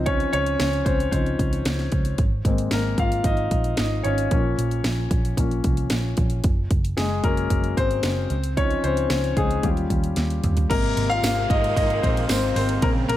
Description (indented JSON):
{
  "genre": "piano-driven pop",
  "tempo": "113 BPM",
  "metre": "4/4",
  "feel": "straight",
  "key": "Ab mixolydian",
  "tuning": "A4 = 439 Hz",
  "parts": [
    { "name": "warm concert grand piano", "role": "accompaniment", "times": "0.0-13.2 s", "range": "C3 to F5", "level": "-24 LUFS", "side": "left 2 dB", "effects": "none" },
    { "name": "vintage muted picked electric bass", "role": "bass", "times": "0.0-13.2 s", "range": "Gb1 to Eb2", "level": "-25 LUFS", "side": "right 1 dB", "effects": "none" },
    { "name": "house drum kit", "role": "drums", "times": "0.1-13.2 s", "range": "crash cymbal, hi-hat, kick drum, ride cymbal, snare drum, toms", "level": "-24 LUFS", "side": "right 1 dB", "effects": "none" },
    { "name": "warm studio string section", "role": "sustained chords", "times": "10.7-13.2 s", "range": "C3 to C4", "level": "-30 LUFS", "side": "right 4 dB", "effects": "none" },
    { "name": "tambourine", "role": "percussion", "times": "11.2-12.4 s", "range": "none", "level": "-34 LUFS", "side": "right 8 dB", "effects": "none" }
  ],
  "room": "light reverb, studio ambience",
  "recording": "none",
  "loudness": "-20 LUFS",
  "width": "side -13 dB against mid",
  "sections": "0.0-10.7 A section; 10.7-13.2 B section",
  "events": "grand piano solo 0.0-10.7, 10.7-13.2; drum fill 10.2-10.7",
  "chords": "0.0 Dbmaj7; 2.2 Abadd9; 4.3 Bbm; 6.4 Gb; 8.3 Dbmaj7; 9.6 Eb7; 10.7 Abadd9"
}